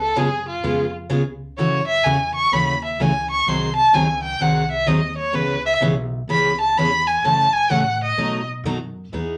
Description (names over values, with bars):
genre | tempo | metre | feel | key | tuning
acoustic string swing (jazz manouche) | 127 BPM | 4/4 | swing 63% on 8ths | unclear | A4 = 440 Hz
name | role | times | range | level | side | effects
rich violin | second line | 0.0-8.5 s | E#4 to C#6 | -21 LUFS | equal | none
upright bass | bass | 0.0-9.4 s | B1 to B2 | -34 LUFS | equal | none
picked steel-string acoustic guitar | accompaniment | 0.2-9.3 s | B2 to G#4 | -24 LUFS | equal | none
room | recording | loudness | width
wet small room reverb, RT60 0.5 s | none | -20 LUFS | mono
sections
0.0-9.1 A section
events
violin solo 0.0-9.1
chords
0.0 C#7; 1.6 F#m7; 3.5 G#7; 5.4 C#m7; 7.2 F#m7; 8.2 B7